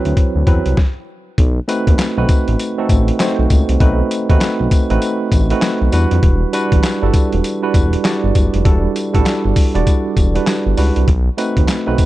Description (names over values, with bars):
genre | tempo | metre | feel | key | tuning
R&B, new jack swing | 99 BPM | 4/4 | swing 62% on 16ths | unclear | A4 = 440 Hz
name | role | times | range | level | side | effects
tine electric piano | accompaniment | 0.0-12.1 s | F#3 to D5 | -18 LUFS | right 2 dB | medium stereo tremolo
smooth synth bass | bass | 0.1-12.0 s | E1 to F2 | -16 LUFS | equal | none
boom bap sampler-style drum kit | drums | 0.1-12.1 s | handclaps, hi-hat, kick drum, snare drum, tambourine | -15 LUFS | equal | none
room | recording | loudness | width
little or no reverb | dark, warm production | -13 LUFS | side -16 dB against mid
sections
0.0-1.4 A section; 1.4-12.1 B section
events
stop 0.8-1.4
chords
0.0 D13; 1.4 B7b9; 5.9 Em9; 11.1 B7b9